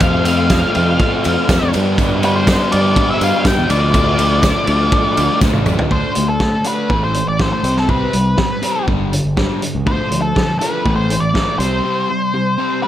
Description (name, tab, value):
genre	indie rock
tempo	122 BPM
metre	4/4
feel	straight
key	D dorian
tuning	A4 = 435 Hz
part	octave-fuzz lead guitar	melody	0.0-12.9 s	A4 to G5	-19 LUFS	left 1 dB	distortion, plate reverb
part	overdriven electric guitar	riff	0.0-12.9 s	F2 to D4	-19 LUFS	left 1 dB	none
part	growling fingered electric bass	bass	0.0-11.8 s	G1 to G2	-19 LUFS	equal	overdrive
part	loose indie drum kit	drums	0.0-11.7 s	hi-hat, kick drum, ride cymbal, snare drum, toms	-18 LUFS	equal	none
part	tambourine	percussion	0.0-5.8 s	none	-34 LUFS	right 17 dB	none
room	light reverb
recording	none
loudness	-13 LUFS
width	side -12 dB against mid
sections	0.0-5.9 A section; 5.9-12.9 B section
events	drum fill 5.4-5.9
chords	0.0 F; 1.7 G; 3.7 Dm; 5.9 D5; 6.9 A5; 7.6 C5; 8.9 G5; 9.9 Dm; 10.9 A5; 11.6 C5